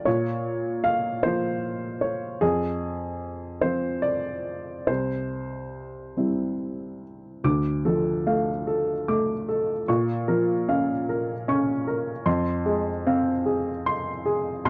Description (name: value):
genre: neoclassical minimalist piano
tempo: 50 BPM (dotted quarters)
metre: 6/8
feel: rubato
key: unclear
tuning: A4 = 440 Hz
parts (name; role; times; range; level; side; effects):
- warm upright piano; solo; 0.0-14.7 s; C2 to D6; -26 LUFS; equal; none
room: light reverb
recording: dry, close 1970s-style studio recording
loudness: -26 LUFS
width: mono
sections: 0.0-7.4 A section; 7.4-14.7 B section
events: none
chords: 0.1 Bbm; 2.4 Fm; 4.9 C; 7.4 Dm; 9.9 Bbm; 12.3 Fm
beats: | 0.06 1.24 | 2.42 3.63 | 4.88 6.17 | 7.44 8.67 | 9.87 11.07 | 12.26 13.46 | 14.65